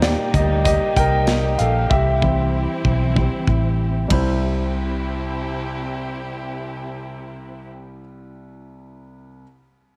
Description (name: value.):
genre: piano-driven pop.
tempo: 96 BPM.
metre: 4/4.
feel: straight.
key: C major.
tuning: A4 = 440 Hz.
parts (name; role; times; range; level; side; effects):
warm grand piano; accompaniment; 0.0-9.4 s; C2 to G5; -26 LUFS; equal; none.
warm studio string section; sustained chords; 0.0-7.7 s; C3 to G4; -32 LUFS; equal; none.
vintage muted fingered electric bass; bass; 0.0-8.0 s; A1 to Eb2; -24 LUFS; equal; none.
modern studio drum kit; drums; 0.0-4.2 s; hi-hat, kick drum, ride cymbal, snare drum; -25 LUFS; equal; none.
room: moderate echo chamber reverb, RT60 2.0 s.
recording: none.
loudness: -20 LUFS.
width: mono.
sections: 0.0-4.4 A section; 4.4-6.9 B section.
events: grand piano solo 0.0-4.4.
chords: 0.0 Eb; 1.9 C.